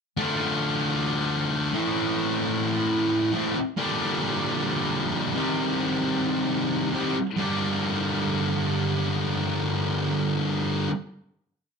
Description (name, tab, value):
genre	rock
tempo	free time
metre	none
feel	none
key	G minor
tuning	A4 = 440 Hz
part	thick fuzz guitar	solo	0.2-10.9 s	G2 to G4	-23 LUFS	equal	distortion
room	wet studio reverb, RT60 0.8 s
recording	none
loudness	-23 LUFS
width	side -5 dB against mid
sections	0.2-7.4 interlude; 7.4-11.0 final chord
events	none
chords	0.2 Dm; 1.8 Am; 3.8 Gm/Bb; 5.4 Cm; 7.4 Gm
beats	free time